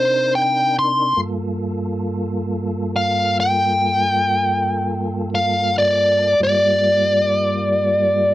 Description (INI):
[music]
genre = blues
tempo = 46 BPM (dotted quarters)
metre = 12/8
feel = straight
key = G minor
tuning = A4 = 440 Hz
[part]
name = smooth overdriven lead guitar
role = melody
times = 0.0-8.3 s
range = C5 to C6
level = -16 LUFS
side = left 1 dB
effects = none
[part]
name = mellow tonewheel organ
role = sustained chords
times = 0.0-8.3 s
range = G2 to Bb4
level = -23 LUFS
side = right 1 dB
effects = slow rotary speaker, chorus vibrato
[sound]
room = moderate club ambience, RT60 0.5 s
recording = dark, warm production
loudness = -16 LUFS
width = side -15 dB against mid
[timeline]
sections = 0.0-8.3 A section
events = lead electric guitar solo 0.0-8.3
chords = 0.0 Cm7; 1.2 Gm7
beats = | 1.18 2.48 3.78 5.09 | 6.39 7.70